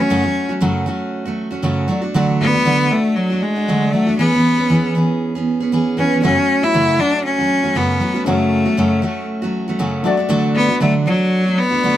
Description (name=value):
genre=acoustic pop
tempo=118 BPM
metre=4/4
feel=swing 55% on 16ths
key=F# minor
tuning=A4 = 440 Hz
part: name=bright cello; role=melody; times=0.0-12.0 s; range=F#3 to E4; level=-16 LUFS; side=left 2 dB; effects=none
part: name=picked steel-string acoustic guitar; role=accompaniment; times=0.0-12.0 s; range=F#2 to G#4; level=-18 LUFS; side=right 2 dB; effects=none
part: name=warm upright piano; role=accompaniment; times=6.2-12.0 s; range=A3 to D5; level=-25 LUFS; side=left 5 dB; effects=none
room=light reverb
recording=close, detailed microphones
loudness=-14 LUFS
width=side -12 dB against mid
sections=0.0-12.0 A section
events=none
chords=0.0 F#m; 1.9 D; 4.2 E6; 6.2 F#m; 10.0 D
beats=| 0.10 0.61 1.12 1.64 | 2.15 2.65 3.17 3.67 | 4.18 4.70 5.21 5.71 | 6.22 6.73 7.24 7.75 | 8.26 8.77 9.28 9.79 | 10.30 10.81 11.32 11.83